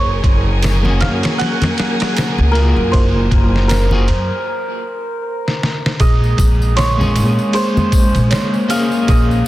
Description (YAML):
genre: trip hop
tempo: 78 BPM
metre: 4/4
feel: swing 58% on 16ths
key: Bb minor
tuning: A4 = 439 Hz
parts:
  - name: santur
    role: melody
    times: 0.0-9.5 s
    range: Bb4 to Gb5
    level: -22 LUFS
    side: right 1 dB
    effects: vintage 12-bit sampler grit, tape echo
  - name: rich studio string section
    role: sustained chords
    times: 0.0-9.5 s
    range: Gb3 to Ab5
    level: -24 LUFS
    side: left 1 dB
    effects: none
  - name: upright bass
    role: bass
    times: 0.0-9.4 s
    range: Gb1 to Bb2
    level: -15 LUFS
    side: equal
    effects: none
  - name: trip hop sampler-style drum kit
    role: drums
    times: 0.2-9.3 s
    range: kick drum, ride cymbal, snare drum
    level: -18 LUFS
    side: equal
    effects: none
  - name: tambourine and congas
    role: percussion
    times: 0.6-9.4 s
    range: none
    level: -24 LUFS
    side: left 1 dB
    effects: none
  - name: electric guitar at the edge of break-up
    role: accompaniment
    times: 0.8-9.5 s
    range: Ab3 to Ab4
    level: -20 LUFS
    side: left 1 dB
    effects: tremolo, tape echo
  - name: small celesta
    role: arpeggios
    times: 6.0-9.5 s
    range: Ab4 to C6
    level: -27 LUFS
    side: right 6 dB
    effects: tape echo
room: little or no reverb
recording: dense, heavily limited modern master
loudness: -13 LUFS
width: side -16 dB against mid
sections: 0.0-6.0 A section; 6.0-9.5 B section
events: break 4.5-6.0; drum fill 5.4-6.0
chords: 0.0 Gbmaj9; 6.0 Bbm9